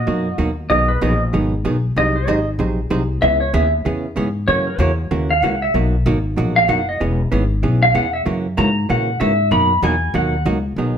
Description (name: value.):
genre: country, western swing.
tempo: 190 BPM.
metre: 4/4.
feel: swing 61% on 8ths.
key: B major.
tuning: A4 = 435 Hz.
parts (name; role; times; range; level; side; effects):
pedal steel guitar; melody; 0.0-10.4 s; F#4 to B5; -18 LUFS; equal; plate reverb.
upright bass; bass; 0.0-11.0 s; E1 to A#2; -19 LUFS; left 1 dB; none.
hollow-body jazz guitar; accompaniment; 0.1-11.0 s; B2 to B#4; -21 LUFS; right 3 dB; none.
room: moderate studio reverb, RT60 0.8 s.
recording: none.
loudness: -15 LUFS.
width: side -8 dB against mid.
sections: 0.7-10.8 A section.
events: pedal steel guitar solo 0.7-10.8.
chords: 0.0 Bmaj7; 0.7 B6; 2.0 G#7; 3.2 C#m7; 4.5 F#7; 5.7 Bmaj7; 7.0 E6; 8.3 F#7; 9.5 Bmaj7.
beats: 0.07 0.39 | 0.70 1.02 1.33 1.65 | 1.96 2.28 2.59 2.91 | 3.22 3.54 3.85 4.17 | 4.48 4.80 5.11 5.43 | 5.74 6.06 6.37 6.69 | 7.00 7.32 7.63 7.95 | 8.26 8.58 8.89 9.21 | 9.52 9.84 10.15 10.46 | 10.78.